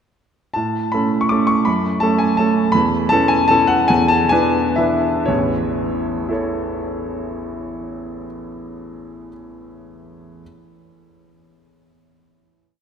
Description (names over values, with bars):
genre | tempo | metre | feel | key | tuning
classical, piano waltz | 116-176 BPM | 3/4 | rubato | A major | A4 = 441 Hz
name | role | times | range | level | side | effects
clear concert grand piano | solo | 0.5-10.4 s | A1 to D6 | -16 LUFS | equal | none
room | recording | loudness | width
wet cathedral reverb, RT60 5.5 s | in a vast, echoing space | -15 LUFS | side -8 dB against mid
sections
0.6-5.3 A section; 5.3-8.3 final chord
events
slowing down 2.2-5.3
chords
0.6 A; 1.7 F#m; 2.7 A/E; 3.9 E7; 5.3 A